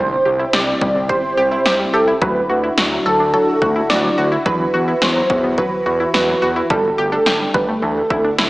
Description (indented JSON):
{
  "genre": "synth-pop",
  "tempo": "107 BPM",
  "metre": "4/4",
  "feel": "straight",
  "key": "unclear",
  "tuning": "A4 = 445 Hz",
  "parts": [
    { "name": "funky polysynth comp", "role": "melody", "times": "0.0-8.5 s", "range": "A4 to D5", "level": "-17 LUFS", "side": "right 1 dB", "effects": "chorus" },
    { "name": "soft string machine", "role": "sustained chords", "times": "0.1-8.5 s", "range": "C3 to G4", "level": "-25 LUFS", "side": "equal", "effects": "ensemble chorus" },
    { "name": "analog pluck", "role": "arpeggios", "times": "0.0-8.5 s", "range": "E3 to G4", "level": "-22 LUFS", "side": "left 1 dB", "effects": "chorus, digital delay" },
    { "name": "smooth synth bass", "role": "bass", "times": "0.0-8.5 s", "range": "G1 to E2", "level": "-23 LUFS", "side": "equal", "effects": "none" },
    { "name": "punchy analog drum machine", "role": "drums", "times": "0.5-8.5 s", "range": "kick drum, snare drum", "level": "-20 LUFS", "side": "equal", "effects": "gated reverb" }
  ],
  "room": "moderate scoring stage reverb, RT60 2.1 s",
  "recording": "small speaker sound",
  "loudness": "-14 LUFS",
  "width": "side -20 dB against mid",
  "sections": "0.0-8.5 A section",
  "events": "none",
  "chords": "0.0 C; 2.2 Dadd9; 4.5 Esus2; 6.7 Gsus2; 7.8 Dadd9",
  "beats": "0.53 1.09 1.65 | 2.21 2.77 3.34 3.90 | 4.46 5.02 5.58 6.14 | 6.70 7.26 7.82 8.38"
}